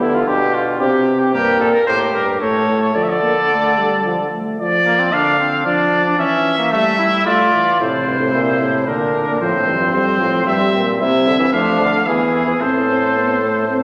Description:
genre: classical, imitative canzona for brass ensemble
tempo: 112 BPM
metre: 3/4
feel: straight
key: D minor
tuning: A4 = 441 Hz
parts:
  - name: mellow trumpet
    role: second line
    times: 0.0-13.8 s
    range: A3 to Bb4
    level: -22 LUFS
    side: equal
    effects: none
  - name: mellow euphonium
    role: accompaniment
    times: 0.0-13.8 s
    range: C3 to D4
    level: -22 LUFS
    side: equal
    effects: none
  - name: clear bass trombone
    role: bass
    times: 0.0-4.3, 7.8-13.8 s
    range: F2 to F3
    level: -23 LUFS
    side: equal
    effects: none
  - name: clear trumpet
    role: melody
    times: 1.3-13.8 s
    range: G4 to F5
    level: -20 LUFS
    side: equal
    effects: none
room: wet scoring stage reverb, RT60 1.9 s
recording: none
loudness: -16 LUFS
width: mono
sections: 0.0-4.6 A section; 4.6-7.8 B section; 7.8-13.8 A section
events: none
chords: 0.0 G; 0.8 C5; 1.3 Gmadd9; 2.4 A; 3.0 Dm; 4.6 Dm/F; 6.2 A/E; 7.3 Dm/A; 7.8 Am; 8.9 Bb; 9.4 F; 10.5 Edim/G; 11.0 C; 11.5 Dm/F; 12.1 E; 12.6 Am

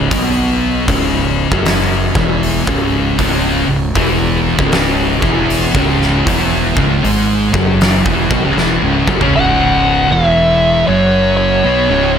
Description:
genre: stoner and doom metal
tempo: 78 BPM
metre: 4/4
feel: swing 65% on 8ths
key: C# minor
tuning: A4 = 442 Hz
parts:
  - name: thick fuzz guitar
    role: riff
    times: 0.0-12.2 s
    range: C#2 to C#4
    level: -17 LUFS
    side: left 9 dB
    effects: distortion
  - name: thick fuzz guitar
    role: riff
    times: 0.0-12.2 s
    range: C#2 to C#4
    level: -19 LUFS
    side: right 10 dB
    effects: distortion
  - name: fuzz fingered electric bass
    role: bass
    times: 0.0-12.2 s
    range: C#1 to C#2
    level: -19 LUFS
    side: equal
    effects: overdrive
  - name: oversized low-tuned drum kit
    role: drums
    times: 0.1-9.3 s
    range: hi-hat, kick drum, snare drum, toms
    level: -18 LUFS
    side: equal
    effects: none
  - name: thick fuzz guitar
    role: riff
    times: 3.2-12.2 s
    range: C#2 to C#4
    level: -18 LUFS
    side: right 1 dB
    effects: distortion
  - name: fuzz lead guitar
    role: melody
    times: 9.4-12.1 s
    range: C#5 to F#5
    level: -13 LUFS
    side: equal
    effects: distortion, tape echo
room: small room ambience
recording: none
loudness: -11 LUFS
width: side -8 dB against mid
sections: 0.0-9.3 A section; 9.3-12.2 B section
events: drum fill 8.6-9.3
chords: 0.0 C#m

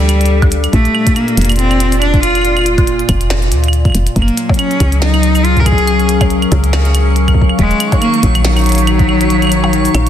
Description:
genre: IDM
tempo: 140 BPM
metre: 4/4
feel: swing 56% on 16ths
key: unclear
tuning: A4 = 440 Hz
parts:
  - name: clear cello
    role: melody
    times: 0.0-10.1 s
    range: Gb3 to A#4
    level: -15 LUFS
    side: equal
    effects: ping-pong delay
  - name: warbly tape-like pad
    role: sustained chords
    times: 0.0-10.1 s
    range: Bb2 to F5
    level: -17 LUFS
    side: left 2 dB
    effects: chorus, built-in reverb, vintage 12-bit sampler grit
  - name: woody FM bass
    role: bass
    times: 0.0-10.1 s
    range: Eb1 to D2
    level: -13 LUFS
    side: equal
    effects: tube saturation
  - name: glitchy drum kit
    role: drums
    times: 0.1-10.1 s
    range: cabasa, claves, hi-hat, percussion blips, snare drum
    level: -20 LUFS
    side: right 1 dB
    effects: overdrive
  - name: electronic kick drum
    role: drums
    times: 0.4-9.1 s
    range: none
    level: -13 LUFS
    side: equal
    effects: overdrive
  - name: backwards swelling texture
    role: texture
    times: 5.9-10.1 s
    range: C#6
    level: -24 LUFS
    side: right 4 dB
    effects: built-in reverb
room: light reverb, digital ambience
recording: dense, heavily limited modern master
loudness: -9 LUFS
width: side -10 dB against mid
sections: 0.0-10.1 A section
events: kick drops out 9.3-10.1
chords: 0.0 G5; 0.7 Bb; 4.2 F#maj7; 7.6 Ebm7

